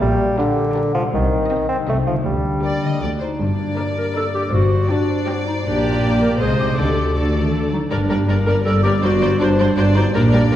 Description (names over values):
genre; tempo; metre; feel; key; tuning
cinematic, playful, whimsical film cue; 160 BPM; 3/4; straight; G minor; A4 = 440 Hz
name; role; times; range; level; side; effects
warm bassoon; accompaniment; 0.0-3.0 s; D3 to C4; -20 LUFS; equal; none
concert harp; arpeggios; 0.0-10.6 s; G2 to A5; -24 LUFS; left 3 dB; none
rich studio double bass section; bass; 0.0-10.6 s; G1 to D2; -22 LUFS; right 1 dB; none
warm chamber cello section; bass; 0.0-10.6 s; C2 to F#3; -22 LUFS; equal; none
rich chamber violin section; melody; 0.4-10.6 s; Bb4 to Eb5; -30 LUFS; left 3 dB; none
warm chamber violin section; second line; 0.4-10.6 s; G4 to D5; -27 LUFS; left 2 dB; none
rich chamber viola section; accompaniment; 0.4-10.6 s; F#3 to C5; -25 LUFS; equal; none
warm clarinet; second line; 3.2-10.6 s; D4 to Bb4; -22 LUFS; equal; none
room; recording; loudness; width
wet scoring stage reverb, RT60 1.7 s; heard from further back in the room, vinyl crackle; -16 LUFS; side -12 dB against mid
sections
0.0-3.4 A section; 3.4-10.6 B section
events
none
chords
0.0 Gm/Bb; 1.1 Cm; 1.9 Adim/C; 2.3 Gm/D; 3.0 D; 3.4 Gm; 4.5 D7/G; 5.7 Gm/Bb; 6.4 Ab/C; 6.8 D; 7.9 Gm; 9.0 D7/G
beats
| 0.01 0.38 0.76 | 1.13 1.51 1.88 | 2.27 2.65 3.03 | 3.41 3.79 4.16 | 4.53 4.91 5.28 | 5.65 6.03 6.40 | 6.78 7.16 7.53 | 7.91 8.29 8.66 | 9.03 9.41 9.78 | 10.15 10.52